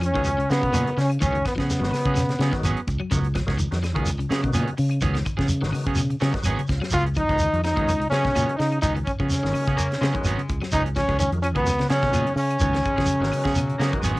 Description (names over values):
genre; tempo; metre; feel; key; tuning
afrobeat; 126 BPM; 4/4; straight; Db mixolydian; A4 = 439 Hz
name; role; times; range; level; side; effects
clear trombone; melody; 0.0-2.8, 6.9-14.0 s; Cb4 to F4; -25 LUFS; equal; cassette tape
electric guitar at the edge of break-up; arpeggios; 0.0-14.2 s; Cb3 to Gb3; -30 LUFS; left 2 dB; cassette tape
clean electric guitar; stabs; 0.0-14.2 s; Gb3 to Ab4; -31 LUFS; right 5 dB; cassette tape
fingered electric bass; bass; 0.0-14.1 s; Ab1 to Db3; -25 LUFS; equal; none
tight funk drum kit; drums; 0.0-14.2 s; hi-hat, kick drum, snare drum; -29 LUFS; equal; cassette tape
claves; percussion; 0.0-14.2 s; none; -40 LUFS; left 4 dB; none
shekere; percussion; 0.0-14.2 s; none; -29 LUFS; equal; none
bright trumpet; second line; 0.1-2.8, 6.9-14.0 s; Cb4 to F4; -33 LUFS; right 1 dB; cassette tape
percussive tonewheel organ; accompaniment; 0.1-14.1 s; Eb3 to F5; -35 LUFS; equal; slow rotary speaker, overdrive, chorus vibrato, cassette tape
clear baritone saxophone; second line; 9.8-14.2 s; Gb3 to Bb3; -35 LUFS; left 3 dB; cassette tape
room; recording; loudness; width
light reverb; home recording on cassette; -20 LUFS; side -20 dB against mid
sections
0.0-14.2 A section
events
tonewheel organ fill 6.2-6.9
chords
0.0 Db7sus4